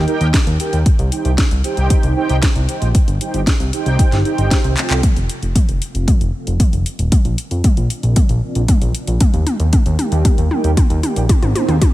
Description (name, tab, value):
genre	italo disco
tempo	115 BPM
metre	4/4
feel	straight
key	unclear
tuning	A4 = 442 Hz
part	mellow synth brass	stabs	0.0-11.7 s	Bb3 to G5	-22 LUFS	right 3 dB	chorus, digital delay
part	fat analog bass	bass	0.0-11.8 s	Eb1 to F2	-18 LUFS	equal	none
part	house drum kit	drums	0.1-11.9 s	handclaps, hi-hat, snare drum, toms	-22 LUFS	left 1 dB	overdrive
part	electronic kick drum	drums	0.3-11.9 s	none	-14 LUFS	equal	overdrive
room	digital ambience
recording	none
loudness	-13 LUFS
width	side -16 dB against mid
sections	0.0-5.0 A section; 5.0-11.9 B section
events	drum fill 4.8, 5.0-11.9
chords	0.0 Eb; 0.9 Cm; 5.0 F; 7.1 Bbadd9; 9.2 Eb; 11.3 Abadd9